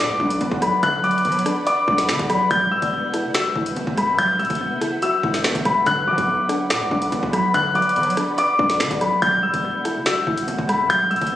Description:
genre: hip hop, drill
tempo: 143 BPM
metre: 4/4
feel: half-time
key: B minor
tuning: A4 = 440 Hz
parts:
  - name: dark baby grand piano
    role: melody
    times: 0.0-11.4 s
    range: B5 to G6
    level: -20 LUFS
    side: left 2 dB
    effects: low-pass filter, ping-pong delay
  - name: soft round pluck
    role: accompaniment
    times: 0.0-11.4 s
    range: D3 to D5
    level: -26 LUFS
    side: equal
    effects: chorus, low-pass filter
  - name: ethereal airy pad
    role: sustained chords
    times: 0.0-11.4 s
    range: B4 to B5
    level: -29 LUFS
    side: equal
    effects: ensemble chorus, built-in reverb, phaser
  - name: distorted 808-style bass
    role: bass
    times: 0.0-11.4 s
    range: D1 to F#3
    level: -28 LUFS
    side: right 1 dB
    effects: distortion
  - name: drill drum kit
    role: drums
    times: 0.2-11.3 s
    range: finger snaps, hi-hat, kick drum, rim click, snare drum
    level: -25 LUFS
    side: equal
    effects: vintage 12-bit sampler grit
room: light reverb, digital ambience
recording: recorded on a phone in the room, studio reverb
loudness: -17 LUFS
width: side -12 dB against mid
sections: 0.0-11.4 A section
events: none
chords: 0.0 Bm; 2.5 Emadd9; 5.9 Bm; 9.2 Emadd9

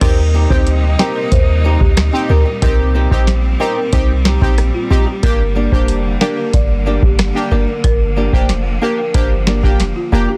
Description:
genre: dancehall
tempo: 92 BPM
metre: 4/4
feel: straight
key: G minor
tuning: A4 = 440 Hz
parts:
  - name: folk marimba with medium mallets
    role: melody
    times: 0.0-10.4 s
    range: F4 to D5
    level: -25 LUFS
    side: equal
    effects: digital delay
  - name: synth brass stab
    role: accompaniment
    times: 0.0-10.3 s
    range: Bb3 to G4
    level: -23 LUFS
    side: equal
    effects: chorus
  - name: clear studio string section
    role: sustained chords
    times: 0.0-10.4 s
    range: Bb2 to Eb4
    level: -27 LUFS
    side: equal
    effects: sidechain pumping
  - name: clean 808-style bass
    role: bass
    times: 0.0-10.3 s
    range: F1 to Eb2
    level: -17 LUFS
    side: equal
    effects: none
  - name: booming analog drum machine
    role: drums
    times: 0.0-9.9 s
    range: crash cymbal, hi-hat, kick drum, rim click, snare drum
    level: -16 LUFS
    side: equal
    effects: vintage 12-bit sampler grit, soft clipping on snare
  - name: flamenco guitar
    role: arpeggios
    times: 0.3-10.3 s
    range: Bb3 to G4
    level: -25 LUFS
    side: equal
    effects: none
room: small room ambience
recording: dense, heavily limited modern master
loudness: -14 LUFS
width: mono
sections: 0.0-10.4 A section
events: none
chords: 0.0 Eb6; 2.6 Cm; 5.2 Gm

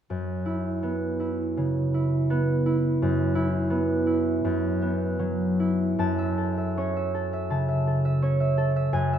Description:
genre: classical, solo harp piece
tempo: 81 BPM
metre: 4/4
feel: uneven beats, rubato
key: F# minor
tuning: A4 = 436 Hz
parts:
  - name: concert harp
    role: solo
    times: 0.1-9.2 s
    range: F#2 to A5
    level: -23 LUFS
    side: right 1 dB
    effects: none
room: wet recital hall reverb, RT60 1.4 s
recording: none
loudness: -23 LUFS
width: side -9 dB against mid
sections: 0.1-6.0 A section; 6.0-9.2 B section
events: none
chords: 0.1 F#7sus4; 3.0 Esus2/F#; 6.0 F#m7

